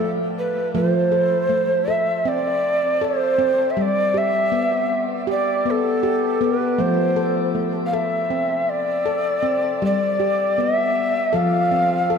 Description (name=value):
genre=world meditative, meditative tuned percussion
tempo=79 BPM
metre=4/4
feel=swing 56% on 16ths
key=F lydian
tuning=A4 = 440 Hz
part: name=breathy mellow Native American-style cedar flute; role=melody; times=0.0-12.2 s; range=A4 to F5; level=-20 LUFS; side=right 1 dB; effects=shimmer reverb, diffuse ambient delay
part: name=handpan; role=arpeggios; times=0.0-12.2 s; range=F3 to A4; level=-22 LUFS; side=left 2 dB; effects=shimmer reverb, diffuse ambient delay
room=wet recital hall reverb, RT60 1.5 s, small room ambience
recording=none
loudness=-18 LUFS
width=side -6 dB against mid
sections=0.7-12.2 A section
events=none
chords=0.0 F; 3.8 G; 6.8 F; 9.8 G; 11.3 F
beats=| 0.75 1.50 2.26 3.01 | 3.77 4.52 5.28 6.04 | 6.79 7.55 8.31 9.07 | 9.82 10.58 11.34 12.10